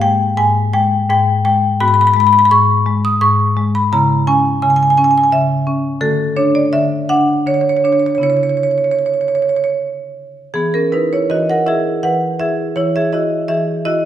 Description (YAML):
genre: classical, contemporary piece for solo marimba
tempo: 78-87 BPM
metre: 3/4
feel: rubato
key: unclear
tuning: A4 = 441 Hz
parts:
  - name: marimba with medium hard mallets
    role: solo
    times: 0.0-14.1 s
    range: Ab2 to D#6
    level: -12 LUFS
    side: equal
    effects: none
room: wet recital hall reverb, RT60 1.4 s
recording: recorded in a church or concert hall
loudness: -12 LUFS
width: side -10 dB against mid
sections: 0.0-10.5 A section; 10.5-14.1 A section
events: none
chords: 0.0 Fmadd9/Ab (rootless); 1.8 G#m7; 3.9 C#m7; 6.0 Dmaj7; 8.2 C#m7; 10.5 Eadd9; 12.7 F#sus2/E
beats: 0.38 1.10 | 1.80 2.51 3.21 | 3.92 4.62 5.32 | 6.02 6.73 7.47 | 8.23 9.00 9.77 | 10.54 11.29 12.02 | 12.75 13.48